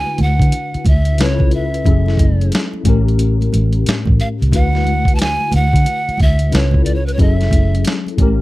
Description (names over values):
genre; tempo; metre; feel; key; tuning
R&B, neo-soul; 90 BPM; 4/4; swing 63% on 16ths; F# minor; A4 = 436 Hz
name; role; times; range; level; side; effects
breathy polished pan flute; melody; 0.0-7.8 s; B4 to A5; -21 LUFS; right 2 dB; none
tine electric piano; accompaniment; 0.0-8.4 s; A2 to B4; -20 LUFS; left 4 dB; ensemble chorus
vintage muted fingered electric bass; bass; 0.0-8.4 s; F#1 to D3; -15 LUFS; equal; none
congas; percussion; 0.1-8.4 s; none; -28 LUFS; right 3 dB; none
boom bap sampler-style drum kit; drums; 0.2-8.4 s; hi-hat, kick drum, snare drum; -16 LUFS; equal; none
room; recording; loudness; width
little or no reverb; dry, close 1970s-style studio recording; -12 LUFS; side -18 dB against mid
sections
0.0-8.4 A section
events
none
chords
0.0 D69; 1.2 C#7alt; 1.9 F#m7; 2.9 A7b9; 4.5 D69; 6.5 C#7alt; 7.2 F#m7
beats
0.52 1.19 | 1.85 2.52 3.19 3.85 | 4.52 5.18 5.85 6.52 | 7.18 7.85